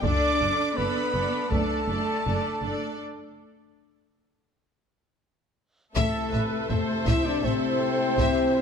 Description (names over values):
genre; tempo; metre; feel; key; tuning
cinematic, epic orchestral film score; 81 BPM; 4/4; straight; unclear; A4 = 441 Hz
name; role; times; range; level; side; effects
rich symphonic violin section; melody; 0.0-8.5 s; D5 to E5; -34 LUFS; left 3 dB; none
dark symphonic violin section; second line; 0.0-8.6 s; A4 to D6; -32 LUFS; left 2 dB; none
rich symphonic viola section; accompaniment; 0.0-8.6 s; D4 to C5; -34 LUFS; equal; none
mellow French horn section; sustained chords; 0.0-8.6 s; A3 to E4; -27 LUFS; left 4 dB; none
mellow trumpet; stabs; 0.0-8.6 s; A4 to E5; -31 LUFS; right 2 dB; none
rich studio double bass section; bass; 0.0-8.3 s; F#1 to A1; -32 LUFS; right 2 dB; none
rich symphonic cello section; bass; 0.0-8.3 s; A2 to D4; -32 LUFS; right 2 dB; none
taiko ensemble; drums; 0.0-8.6 s; none; -30 LUFS; equal; none
rich symphonic string section; sustained chords; 5.9-8.6 s; A3 to E5; -35 LUFS; equal; none
warm trombone section; sustained chords; 6.0-8.6 s; C3 to E4; -34 LUFS; right 4 dB; none
room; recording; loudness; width
light reverb; close, detailed microphones; -23 LUFS; side -6 dB against mid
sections
0.0-6.0 A section; 6.0-8.6 B section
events
break 3.0-6.0; drum fill 4.8-6.0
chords
0.0 D/F#; 3.0 N.C.; 6.0 Am